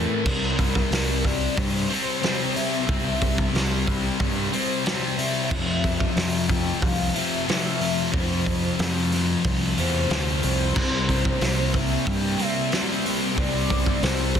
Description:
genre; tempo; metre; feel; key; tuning
rock, shoegaze and dream pop; 92 BPM; 4/4; straight; unclear; A4 = 442 Hz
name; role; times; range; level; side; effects
mellow horn-like synth lead; melody; 0.0-14.4 s; Bb4 to G5; -31 LUFS; left 2 dB; chorus, tremolo, slapback echo
distorted electric guitar; riff; 0.0-14.4 s; F2 to C4; -28 LUFS; right 2 dB; distortion
electric guitar through a small old amp; riff; 0.0-0.3, 10.8-14.4 s; A2 to Bb4; -33 LUFS; right 14 dB; reverse reverb
thick fuzz guitar; riff; 0.0-14.4 s; F2 to C4; -28 LUFS; left 12 dB; distortion, wide subtle chorus
fuzz fingered electric bass; bass; 0.0-14.4 s; C2 to G2; -27 LUFS; right 1 dB; overdrive
loose indie drum kit; drums; 0.3-14.4 s; crash cymbal, hi-hat, kick drum, snare drum; -26 LUFS; right 1 dB; none
room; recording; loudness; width
small room ambience; dense, heavily limited modern master; -21 LUFS; side -8 dB against mid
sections
0.3-14.4 A section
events
none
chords
0.3 C7; 5.5 F5; 10.8 C7

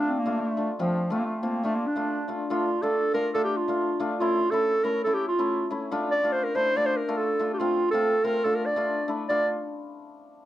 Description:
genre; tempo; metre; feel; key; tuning
klezmer; 141 BPM; 2/4; straight; D minor; A4 = 441 Hz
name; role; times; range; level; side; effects
mellow clarinet; melody; 0.0-9.5 s; F3 to D5; -24 LUFS; right 1 dB; none
hammered dulcimer; accompaniment; 0.0-9.5 s; A3 to F4; -29 LUFS; left 2 dB; none
room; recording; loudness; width
moderate studio reverb, RT60 0.6 s; dark, warm production; -23 LUFS; side -14 dB against mid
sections
0.0-2.5 A section; 2.5-9.3 A section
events
none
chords
0.0 Dm; 0.8 F; 1.7 Dm; 4.2 A; 5.9 Dm; 7.6 F; 8.4 Dm

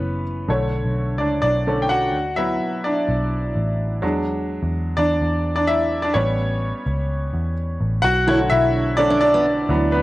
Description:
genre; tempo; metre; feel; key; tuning
piano-driven pop; 127 BPM; 4/4; straight; B minor; A4 = 440 Hz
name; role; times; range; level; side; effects
bright upright piano; accompaniment; 0.0-10.0 s; D3 to G5; -20 LUFS; equal; cassette tape
vintage muted picked electric bass; bass; 0.0-10.0 s; F#1 to E2; -23 LUFS; equal; none
picked steel-string acoustic guitar; riff; 8.3-9.5 s; B3 to E4; -24 LUFS; right 2 dB; cassette tape
room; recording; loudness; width
moderate spring reverb, RT60 1.9 s, studio ambience; home recording on cassette; -18 LUFS; side -17 dB against mid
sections
0.5-8.0 A section; 8.0-10.0 B section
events
upright piano solo 0.5-8.0, 8.0-10.0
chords
0.5 Bm7; 2.1 D6; 4.0 E7; 6.2 A7; 8.0 Bm7

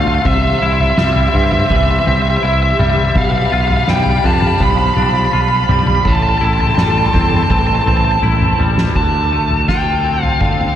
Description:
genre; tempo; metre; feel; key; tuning
post-rock; 83 BPM; 4/4; straight; unclear; A4 = 444 Hz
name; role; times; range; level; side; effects
biting lead guitar; melody; 0.0-10.8 s; E5 to B5; -16 LUFS; right 1 dB; overdrive, diffuse ambient delay
dark studio string section; sustained chords; 0.0-8.9 s; F4 to C6; -24 LUFS; equal; none
twangy electric guitar; arpeggios; 0.0-10.8 s; A2 to F4; -21 LUFS; left 3 dB; analog chorus, diffuse ambient delay
picked electric bass; bass; 0.0-10.8 s; A1 to G2; -18 LUFS; equal; none
soft-mallet drum kit; drums; 0.1-10.8 s; crash cymbal, kick drum, snare drum, toms; -17 LUFS; equal; none
room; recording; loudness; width
moderate huge ambient reverb, RT60 5.8 s; dreamy mix soaked in reverb; -11 LUFS; side -10 dB against mid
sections
0.0-9.0 A section; 9.0-10.8 B section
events
drum fill 8.2-9.0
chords
0.3 C; 3.2 G7/B; 6.1 Am7; 9.0 Dm7

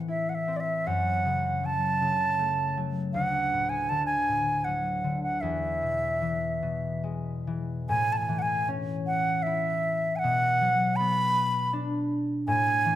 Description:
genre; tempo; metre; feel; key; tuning
celtic folk, Celtic slow air; 69-82 BPM; 3/4; rubato; unclear; A4 = 439 Hz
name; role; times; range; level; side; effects
concert harp; accompaniment; 0.0-13.0 s; D2 to E4; -30 LUFS; left 2 dB; none
bright baroque flute; melody; 0.1-13.0 s; D5 to B5; -26 LUFS; right 2 dB; none
room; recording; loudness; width
moderate recital hall reverb, RT60 1.5 s; none; -25 LUFS; side -12 dB against mid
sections
0.0-7.9 A section; 7.9-13.0 B section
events
none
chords
0.0 Am; 0.9 F#m; 3.1 D; 5.4 E; 7.9 A; 10.2 Bm

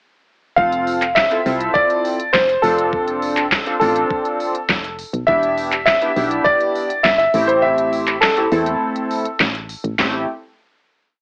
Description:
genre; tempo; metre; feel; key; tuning
dance-pop; 102 BPM; 4/4; straight; A minor; A4 = 440 Hz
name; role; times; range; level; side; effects
clear concert grand piano; melody; 0.6-9.4 s; A4 to F5; -20 LUFS; equal; cassette tape, tape echo
chorused polysynth; accompaniment; 0.6-10.3 s; A3 to A4; -23 LUFS; equal; sidechain pumping, cassette tape
solid FM bass; bass; 0.6-10.3 s; E1 to E2; -28 LUFS; equal; sidechain pumping
smooth R&B drum kit; drums; 0.6-10.1 s; handclaps, hi-hat, kick drum, snare drum; -23 LUFS; equal; cassette tape
room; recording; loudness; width
moderate small room reverb, RT60 0.5 s; home recording on cassette, AM radio sound; -18 LUFS; mono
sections
0.6-10.0 chorus; 10.0-11.2 final chord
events
break 7.6-10.0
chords
0.6 Fmaj7; 2.6 Dm7/F; 5.3 Em7; 7.3 Am7

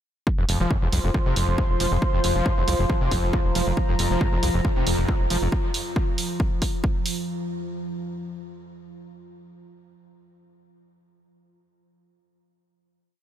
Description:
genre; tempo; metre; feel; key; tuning
driving peak-time techno; 137 BPM; 4/4; straight; unclear; A4 = 439 Hz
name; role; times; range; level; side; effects
deep dark ambient pad; drone; 1.3-7.3 s; F3; -31 LUFS; right 1 dB; chorus, built-in reverb, sidechain pumping
electronic kick drum; drums; 0.3-6.9 s; none; -24 LUFS; equal; overdrive
warbly tape-like pad; texture; 0.3-5.5 s; F4 to C6; -31 LUFS; left 1 dB; chorus, built-in reverb, sidechain pumping
screaming distorted acid line; riff; 0.4-5.5 s; E2 to F3; -28 LUFS; equal; distortion, ensemble chorus, sidechain pumping, tape echo
tight sequencer bass; bass; 0.4-5.5 s; F1 to C2; -26 LUFS; equal; tube saturation, sidechain pumping
electronic hi-hat; drums; 0.5-7.1 s; none; -30 LUFS; right 3 dB; sidechain pumping on hats
room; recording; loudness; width
light reverb; none; -21 LUFS; side -10 dB against mid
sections
0.3-7.3 groove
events
none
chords
0.3 F5

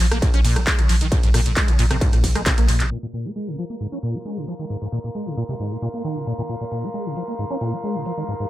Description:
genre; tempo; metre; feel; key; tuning
driving peak-time techno; 134 BPM; 4/4; straight; Bb minor; A4 = 441 Hz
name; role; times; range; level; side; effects
acid bass, saw; riff; 0.0-8.5 s; Ab2 to Db4; -25 LUFS; equal; ensemble chorus, sidechain pumping, analog delay
warm sub bass; bass; 0.0-2.9 s; Bb1; -21 LUFS; equal; overdrive, sidechain pumping, low-pass filter
techno drum kit; drums; 0.0-8.2 s; handclaps, hi-hat, ride cymbal, rim click; -24 LUFS; equal; tape echo
electronic kick drum; drums; 0.2-2.6 s; none; -19 LUFS; equal; distortion
airy breathy pad; texture; 3.4-8.5 s; Bb4 to C6; -32 LUFS; equal; chorus, sidechain pumping
room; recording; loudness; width
light reverb; echo-heavy mix, low-pass filter; -19 LUFS; side -15 dB against mid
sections
0.0-2.9 A section; 2.9-8.5 B section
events
drop 0.0-2.9; filter sweep on acid bass 2.9-8.5; filter sweep 2.9-8.5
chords
0.0 Bb5

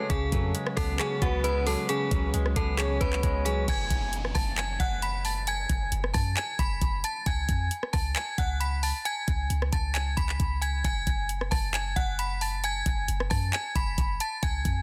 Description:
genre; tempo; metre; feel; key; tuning
hip hop, trap; 134 BPM; 4/4; half-time; F# minor; A4 = 440 Hz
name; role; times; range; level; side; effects
metallic FM bell; melody; 0.0-14.8 s; F#4 to B6; -33 LUFS; equal; chorus, digital delay
breathy flute-like synth lead; second line; 0.0-3.6 s; A4 to C#5; -40 LUFS; equal; chorus, digital delay
clean electric guitar; accompaniment; 0.0-3.7 s; C#3 to C#4; -36 LUFS; equal; none
warm studio string section; sustained chords; 0.0-3.6 s; C#3 to B4; -43 LUFS; equal; none
clean 808-style bass; bass; 0.1-14.8 s; F#1 to F#2; -32 LUFS; equal; none
trap drum kit; drums; 0.1-14.8 s; handclaps, hi-hat, kick drum, rim click; -32 LUFS; equal; none
downlifter; sound effects; 3.7-7.3 s; none; -45 LUFS; equal; none
room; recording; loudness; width
little or no reverb; dense, heavily limited modern master; -28 LUFS; mono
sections
0.0-3.7 A section; 3.7-14.8 B section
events
none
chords
0.1 C#7sus4; 3.7 F#madd9; 7.3 C#7(no3); 10.8 F#madd9

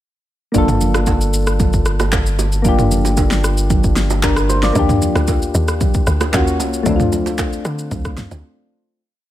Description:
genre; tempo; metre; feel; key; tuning
amapiano; 114 BPM; 4/4; straight; G minor; A4 = 442 Hz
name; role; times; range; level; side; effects
soft electric-piano-like synth keys; accompaniment; 0.5-9.0 s; A3 to D5; -19 LUFS; left 2 dB; chorus
saturated sub bass; bass; 0.5-4.7 s; G1; -18 LUFS; equal; none
deep house drum kit; drums; 0.5-8.4 s; handclaps, kick drum, rim click, shaker, snare drum, toms; -18 LUFS; equal; none
congas and bongos; percussion; 0.5-8.4 s; none; -25 LUFS; right 10 dB; none
woody log drum bass; bass; 4.8-8.4 s; C2 to D3; -20 LUFS; equal; none
room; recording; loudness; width
little or no reverb; none; -14 LUFS; side -13 dB against mid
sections
0.5-9.0 groove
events
fade-out 6.9-9.0; break 8.4-9.0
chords
0.5 Gm9; 4.8 Ebmaj9; 6.3 Ebm7; 6.9 Dm7

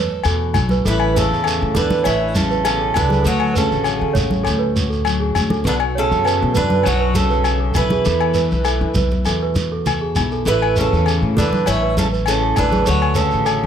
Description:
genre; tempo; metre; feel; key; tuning
highlife guitar band; 100 BPM; 4/4; straight; A major; A4 = 440 Hz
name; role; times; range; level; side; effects
picked steel-string acoustic guitar; accompaniment; 0.0-13.7 s; F#2 to A4; -28 LUFS; left 6 dB; none
small celesta; arpeggios; 0.0-13.7 s; G#4 to C#5; -25 LUFS; right 7 dB; analog delay
upright bass; bass; 0.0-13.7 s; A1 to E3; -21 LUFS; left 1 dB; none
agogo bells; percussion; 0.2-13.6 s; none; -25 LUFS; left 10 dB; none
shekere; percussion; 0.2-13.6 s; none; -25 LUFS; right 2 dB; none
congas; percussion; 0.5-12.9 s; none; -24 LUFS; right 1 dB; none
picked old ladder-braced acoustic guitar; melody; 0.9-13.7 s; C#4 to C#5; -20 LUFS; right 3 dB; analog delay
growling alto saxophone; second line; 0.9-13.7 s; C#3 to F#3; -28 LUFS; left 6 dB; none
room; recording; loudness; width
light reverb; none; -15 LUFS; side -8 dB against mid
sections
0.8-13.7 A section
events
none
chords
0.0 Esus4; 0.8 Aadd9; 3.2 Dmaj7; 5.7 Bmadd9; 8.1 Esus4; 10.5 Aadd9; 12.9 Dmaj7

